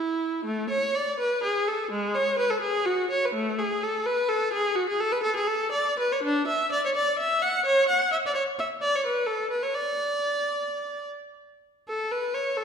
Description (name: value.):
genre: classical, baroque-style suite movement for unaccompanied viola.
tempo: 84 BPM (dotted quarters).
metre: 12/8.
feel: rubato.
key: A major.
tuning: A4 = 436 Hz.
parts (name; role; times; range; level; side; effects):
rich viola; solo; 0.0-12.6 s; G#3 to F#5; -24 LUFS; equal; none.
room: wet recital hall reverb, RT60 1.5 s.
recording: heard from further back in the room.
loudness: -24 LUFS.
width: side -6 dB against mid.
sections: 0.0-12.6 A section.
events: none.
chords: none.